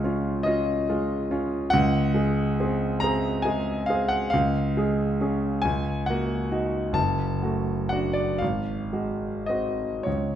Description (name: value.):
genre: classical, romantic nocturne for solo piano.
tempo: 33-48 BPM (dotted quarters).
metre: 12/8.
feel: rubato.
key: unclear.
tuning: A4 = 441 Hz.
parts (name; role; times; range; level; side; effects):
warm concert grand piano; solo; 0.0-10.4 s; F#1 to Bb5; -23 LUFS; equal; none.
room: wet recital hall reverb, RT60 1.6 s.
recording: none.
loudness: -23 LUFS.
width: side -10 dB against mid.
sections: 0.0-10.4 A section.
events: none.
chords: 0.0 Db; 1.7 Ab7/Db; 4.3 Db; 5.6 Ebm7/Db; 7.0 D/F#; 8.4 Ab7.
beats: 0.45 | 1.72 3.02 4.33 5.63 | 6.96 8.41 10.06.